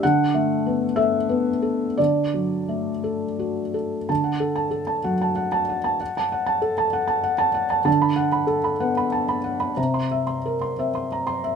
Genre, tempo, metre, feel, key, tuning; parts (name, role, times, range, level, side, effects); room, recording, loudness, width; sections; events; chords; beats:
neoclassical minimalist piano; 56-66 BPM (dotted quarters); 6/8; rubato; D major; A4 = 440 Hz
felt-muted upright piano; solo; 0.0-11.6 s; C3 to C6; -20 LUFS; equal
light reverb; minimal, uncompressed stereo recording; -20 LUFS; side -6 dB against mid
0.0-4.1 A section; 4.1-11.6 B section
0.0 Asus2/D; 2.0 D; 7.9 Bm7/D; 9.8 C7
| 0.02 0.97 | 1.98 3.04 | 4.09 5.05 | 6.00 6.93 | 7.87 8.80 | 9.77 10.78